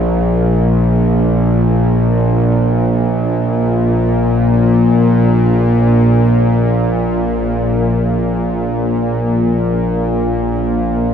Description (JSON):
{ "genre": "ambient", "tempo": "free time", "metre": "none", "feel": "none", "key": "unclear", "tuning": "A4 = 440 Hz", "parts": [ { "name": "bowed-like drone", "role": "solo", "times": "0.0-11.1 s", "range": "Bb1 to Bb2", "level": "-12 LUFS", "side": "equal", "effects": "built-in reverb, ping-pong delay" } ], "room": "wet cathedral reverb, RT60 6.0 s", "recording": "none", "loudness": "-12 LUFS", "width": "side -8 dB against mid", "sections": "0.0-3.7 A section; 3.7-11.1 B section", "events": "none", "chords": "none", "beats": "free time" }